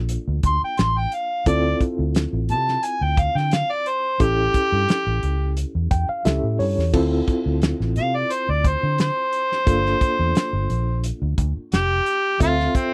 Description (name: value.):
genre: straight-eighth soul blues.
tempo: 88 BPM.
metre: 4/4.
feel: straight.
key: D minor.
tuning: A4 = 440 Hz.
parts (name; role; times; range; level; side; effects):
reed electric piano; accompaniment; 0.0-12.9 s; Bb3 to G5; -28 LUFS; equal; fast tremolo.
vintage muted fingered electric bass; bass; 0.0-12.7 s; F1 to D3; -25 LUFS; equal; none.
warm soul drum kit; drums; 0.1-12.9 s; crash cymbal, hi-hat, kick drum, snare drum; -24 LUFS; equal; none.
mellow harmonica; melody; 0.5-12.9 s; C4 to C6; -24 LUFS; equal; none.
room: little or no reverb.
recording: none.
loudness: -21 LUFS.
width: mono.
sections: 0.0-6.9 A section; 6.9-12.9 B section.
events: reed electric piano fill 5.6-6.9; harmonica solo 6.9-12.9.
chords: 0.0 Gm7; 1.5 Dm7; 4.2 A7; 6.9 Dm7; 9.7 Gm7; 12.4 Dm7.